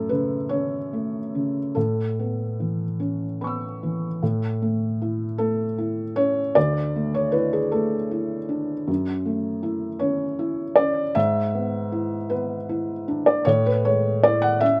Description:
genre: neoclassical minimalist piano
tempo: 52 BPM (dotted quarters)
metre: 6/8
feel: rubato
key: A major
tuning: A4 = 445 Hz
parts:
  - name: felt-muted upright piano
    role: solo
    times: 0.0-14.8 s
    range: D2 to E6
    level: -24 LUFS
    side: equal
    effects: none
room: little or no reverb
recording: recorded outdoors, with no room sound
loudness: -24 LUFS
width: mono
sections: 0.0-4.2 A section; 4.2-14.8 B section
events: none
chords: 0.0 F#m; 1.8 Aadd9; 4.2 A; 6.6 Dsus2; 8.9 F#m7; 11.2 E7/G#; 13.5 Amaj7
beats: 0.52 | 1.75 2.99 | 4.21 5.39 | 6.55 7.72 | 8.89 10.03 | 11.17 12.31 | 13.47 14.63

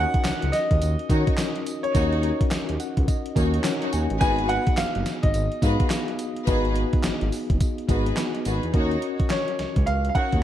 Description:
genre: R&B, new jack swing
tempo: 106 BPM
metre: 4/4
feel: swing 62% on 16ths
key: Eb minor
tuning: A4 = 437 Hz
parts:
  - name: clear concert grand piano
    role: melody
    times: 0.0-10.4 s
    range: Db5 to Ab5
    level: -28 LUFS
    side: equal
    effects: none
  - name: mellow tine electric piano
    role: accompaniment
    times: 0.0-10.4 s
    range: Cb4 to Ab5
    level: -28 LUFS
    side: left 2 dB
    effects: medium stereo tremolo
  - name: smooth synth bass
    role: bass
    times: 0.0-10.4 s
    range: Gb1 to Eb3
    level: -25 LUFS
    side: equal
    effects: none
  - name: gated 80s digital drum machine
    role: drums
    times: 0.1-10.4 s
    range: handclaps, hi-hat, kick drum, snare drum, tambourine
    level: -24 LUFS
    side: equal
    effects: gated reverb, gated reverb snare, overdrive
  - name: rich studio string section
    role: stabs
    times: 1.1-10.4 s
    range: Eb4 to Db5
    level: -32 LUFS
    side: left 1 dB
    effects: digital delay
room: light reverb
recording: dark, warm production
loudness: -21 LUFS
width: side -11 dB against mid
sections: 0.0-8.7 A section; 8.7-10.4 B section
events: tine electric piano fill 2.5-4.2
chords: 0.0 Ebm7; 4.2 Abm7; 8.7 Ebm7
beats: 0.25 0.81 1.38 | 1.95 2.51 3.08 3.65 | 4.21 4.78 5.34 5.91 | 6.47 7.04 7.61 8.17 | 8.74 9.30 9.87

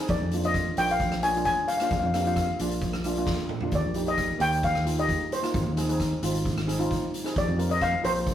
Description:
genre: calypso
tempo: 132 BPM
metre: 4/4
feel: straight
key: unclear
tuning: A4 = 441 Hz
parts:
  - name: steel pan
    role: accompaniment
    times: 0.0-8.3 s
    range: Bb3 to Bb4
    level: -31 LUFS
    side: right 2 dB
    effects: none
  - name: steel pan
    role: melody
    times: 0.1-8.3 s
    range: C5 to Ab5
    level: -26 LUFS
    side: left 2 dB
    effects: none
  - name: fingered electric bass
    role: bass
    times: 0.1-8.3 s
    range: Ab1 to F2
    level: -29 LUFS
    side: equal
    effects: none
  - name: street-band drum kit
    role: drums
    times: 0.1-8.3 s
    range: hi-hat, kick drum, rim click, snare drum, toms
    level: -31 LUFS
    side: equal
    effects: none
room: moderate studio reverb, RT60 0.5 s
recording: rough rehearsal-room recording, warm saturation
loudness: -24 LUFS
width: side -10 dB against mid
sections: 0.0-8.3 A section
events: drum fill 3.3-3.7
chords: 0.1 Bb; 3.7 Eb; 5.5 Ab; 7.4 Bbsus2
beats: | 0.10 0.55 1.00 1.46 | 1.91 2.36 2.82 3.27 | 3.73 4.18 4.63 5.09 | 5.54 6.00 6.45 6.91 | 7.36 7.81 8.27

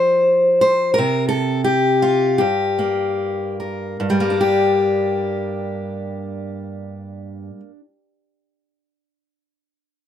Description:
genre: folk, solo fingerstyle acoustic guitar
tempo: 70-94 BPM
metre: 4/4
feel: rubato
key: G minor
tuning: A4 = 441 Hz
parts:
  - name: fingerpicked steel-string acoustic guitar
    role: solo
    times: 0.0-7.8 s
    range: G2 to C5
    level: -17 LUFS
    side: left 1 dB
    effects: none
room: light reverb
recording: close, detailed microphones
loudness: -16 LUFS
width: side -10 dB against mid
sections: 0.0-4.0 A section; 4.0-7.3 B section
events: slowing down 0.0-4.0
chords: 0.0 F; 1.0 N.C.; 2.4 Gm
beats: 0.31 | 0.97 1.67 2.40 3.18 | 4.01 4.84 5.66 6.48

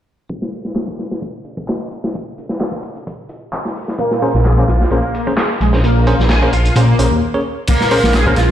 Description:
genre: breakbeat, breaks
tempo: 130 BPM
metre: 4/4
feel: swing 53% on 16ths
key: Bb minor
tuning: A4 = 441 Hz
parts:
  - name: crunchy breakbeat drum kit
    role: drums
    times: 0.3-8.5 s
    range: crash cymbal, hi-hat, kick drum, snare drum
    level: -21 LUFS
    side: equal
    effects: high-pass filter on kick, high-pass filter on hats, high-pass filter on cymbals, high-pass filter on snare, high-pass filter on room
  - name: electronic handclaps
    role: drums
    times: 0.8-8.2 s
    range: none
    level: -26 LUFS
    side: equal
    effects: overdrive, low-pass filter on snare, low-pass filter on room
  - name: overdriven synth lead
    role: riff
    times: 4.0-8.5 s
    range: Ab3 to Ab4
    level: -18 LUFS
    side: equal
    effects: phaser, tube saturation, ensemble chorus, cassette tape, tape echo
  - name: bell-like tine electric piano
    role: stabs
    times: 4.2-8.3 s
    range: Db4 to Db5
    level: -20 LUFS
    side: right 1 dB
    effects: fast stereo tremolo, vintage 12-bit sampler grit, tape echo
  - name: dark detuned saw bass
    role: bass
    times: 4.3-8.5 s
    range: Bb1 to Bb2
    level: -13 LUFS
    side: equal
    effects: none
room: light reverb, small room ambience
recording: played on a big sound system in a bare room, stone room reverb, low-pass filter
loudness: -13 LUFS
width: side -11 dB against mid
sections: 0.3-7.7 A section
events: filter sweep on drum 0.3-7.7; filter sweep 0.3-7.7; break 7.2-7.7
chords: 0.3 Bb7(no3); 7.7 Bbm9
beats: | 0.30 0.76 1.22 1.68 | 2.15 2.61 3.07 3.53 | 3.99 4.45 4.91 5.38 | 5.84 6.30 6.76 7.22 | 7.68 8.14

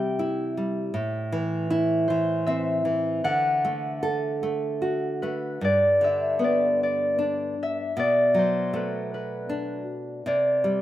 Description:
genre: children's music, lullaby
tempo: 52 BPM (dotted quarters)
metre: 6/8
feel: rubato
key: G major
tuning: A4 = 438 Hz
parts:
  - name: concert harp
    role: melody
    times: 0.0-10.8 s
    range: B4 to G5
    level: -24 LUFS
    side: left 1 dB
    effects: none
  - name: nylon-string guitar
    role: accompaniment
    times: 0.0-10.8 s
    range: G2 to A4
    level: -26 LUFS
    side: right 1 dB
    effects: none
room: small room ambience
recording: rough home demo mix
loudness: -22 LUFS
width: side -13 dB against mid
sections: 0.0-5.6 A section; 5.6-10.8 B section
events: none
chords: 0.0 C; 0.9 Am; 3.2 D; 5.6 G; 8.0 Bm7; 10.2 Csus2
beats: | 0.94 2.08 | 3.24 4.43 | 5.62 6.80 | 7.97 9.11 | 10.25

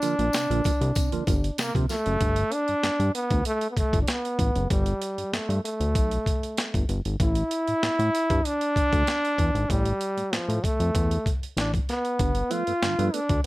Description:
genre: funk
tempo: 96 BPM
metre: 4/4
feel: straight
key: unclear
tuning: A4 = 439 Hz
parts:
  - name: clear trombone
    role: melody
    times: 0.0-13.5 s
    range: F3 to F4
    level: -26 LUFS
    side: equal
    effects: none
  - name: percussive tonewheel organ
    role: stabs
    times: 0.0-2.0, 12.2-13.2 s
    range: G2 to B3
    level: -31 LUFS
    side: right 7 dB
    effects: slow rotary speaker
  - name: breakbeat sampler-style drum kit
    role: drums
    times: 0.0-13.4 s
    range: hi-hat, kick drum, snare drum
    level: -27 LUFS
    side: equal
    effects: none
  - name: tambourine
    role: percussion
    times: 0.0-2.0 s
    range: none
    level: -39 LUFS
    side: left 7 dB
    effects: none
  - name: fat analog bass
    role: bass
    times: 0.2-13.4 s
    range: F#1 to C3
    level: -26 LUFS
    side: equal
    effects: none
room: light reverb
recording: none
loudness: -22 LUFS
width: side -19 dB against mid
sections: 0.0-2.2 A section; 2.2-13.5 B section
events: none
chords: 0.0 C9sus4; 2.2 Gsus2; 7.2 Asus4; 12.2 G9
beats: 0.34 0.96 1.58 | 2.21 2.83 3.46 4.08 | 4.70 5.33 5.95 6.58 | 7.20 7.82 8.45 9.07 | 9.70 10.32 10.95 11.57 | 12.19 12.82 13.44

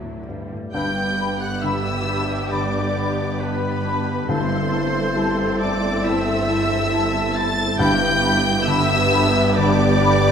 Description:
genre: cinematic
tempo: 68 BPM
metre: 4/4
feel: rubato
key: G major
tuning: A4 = 441 Hz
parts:
  - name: warm symphonic violin section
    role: melody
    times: 0.0-10.3 s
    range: A4 to A6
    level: -26 LUFS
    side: left 2 dB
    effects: none
  - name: warm symphonic violin section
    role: second line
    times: 0.0-10.3 s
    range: D4 to A5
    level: -27 LUFS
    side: left 2 dB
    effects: none
  - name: warm concert grand piano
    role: accompaniment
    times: 0.0-10.3 s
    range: G2 to F#5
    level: -30 LUFS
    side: left 2 dB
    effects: none
  - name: warm symphonic viola section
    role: accompaniment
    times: 0.0-10.3 s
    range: F#3 to A4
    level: -26 LUFS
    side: equal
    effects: none
  - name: concert harp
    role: arpeggios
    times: 0.0-10.3 s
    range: G2 to A4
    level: -29 LUFS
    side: left 7 dB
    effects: none
  - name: clear symphonic double bass section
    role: bass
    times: 0.0-10.3 s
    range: G1 to D2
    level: -28 LUFS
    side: right 4 dB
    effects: none
  - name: rich symphonic cello section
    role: bass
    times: 0.0-10.3 s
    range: G2 to D3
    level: -27 LUFS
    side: right 5 dB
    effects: none
  - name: clear oboe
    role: second line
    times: 0.7-10.3 s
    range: B4 to A5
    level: -28 LUFS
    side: right 1 dB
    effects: none
  - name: dark clarinet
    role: second line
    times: 0.7-10.2 s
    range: D4 to E4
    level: -30 LUFS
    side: right 1 dB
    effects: none
  - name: dark French horn section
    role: sustained chords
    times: 0.7-10.3 s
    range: A3 to E4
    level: -27 LUFS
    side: left 1 dB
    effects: none
  - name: timpani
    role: percussion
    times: 0.7-9.1 s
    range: G2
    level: -29 LUFS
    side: equal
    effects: none
  - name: mellow flute section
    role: second line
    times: 0.8-10.1 s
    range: A5 to B5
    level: -29 LUFS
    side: left 3 dB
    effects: none
room: wet scoring stage reverb, RT60 1.5 s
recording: none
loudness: -17 LUFS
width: side -7 dB against mid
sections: 0.7-10.3 A section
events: none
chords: 0.0 Dadd9; 0.7 G; 4.3 Am7/G; 7.8 G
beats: | 0.74 1.64 2.52 3.41 | 4.29 5.17 6.05 6.93 | 7.80 8.68 9.57

